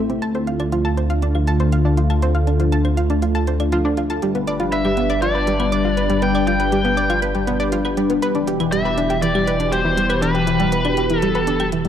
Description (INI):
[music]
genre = ambient, sequencer-driven space music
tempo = 120 BPM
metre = 4/4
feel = straight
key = unclear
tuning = A4 = 440 Hz
[part]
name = phased analog pad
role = sustained chords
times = 0.0-11.9 s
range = B2 to B4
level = -21 LUFS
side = left 1 dB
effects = phaser, chorus
[part]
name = analog pluck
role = riff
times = 0.0-11.9 s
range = E3 to A5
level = -22 LUFS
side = equal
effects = chorus, tape echo
[part]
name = warm sub bass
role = bass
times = 0.0-11.9 s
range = E1 to D2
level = -23 LUFS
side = equal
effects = none
[part]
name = electronic hi-hat and claves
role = percussion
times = 0.1-11.9 s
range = none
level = -35 LUFS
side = right 4 dB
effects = tape echo
[part]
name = biting lead guitar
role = melody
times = 4.7-11.7 s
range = B4 to G5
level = -22 LUFS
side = equal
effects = overdrive, tape echo
[sound]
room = wet concert hall reverb, RT60 2.1 s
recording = none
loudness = -16 LUFS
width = side -9 dB against mid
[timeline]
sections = 0.0-11.9 A section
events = fade-in on drum 0.0-11.9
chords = 0.2 Dm; 4.2 G; 8.2 Em